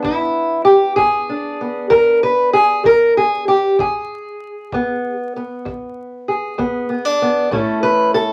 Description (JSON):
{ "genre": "acoustic country blues, solo or duo", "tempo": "64 BPM (dotted quarters)", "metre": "12/8", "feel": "straight", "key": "E mixolydian", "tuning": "A4 = 440 Hz", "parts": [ { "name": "fingerpicked steel-string acoustic guitar", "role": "melody", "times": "0.0-8.3 s", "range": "E2 to B4", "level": "-17 LUFS", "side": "equal", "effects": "none" }, { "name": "kick drum", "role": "drums", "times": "0.0-7.7 s", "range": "none", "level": "-38 LUFS", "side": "equal", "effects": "none" } ], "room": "moderate small room reverb, RT60 0.5 s", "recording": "vinyl crackle", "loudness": "-16 LUFS", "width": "mono", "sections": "0.0-8.3 A section", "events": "none", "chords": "0.0 E7; 7.5 A", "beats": "| 0.04 0.98 1.92 2.85 | 3.79 4.72 5.66 6.59 | 7.53" }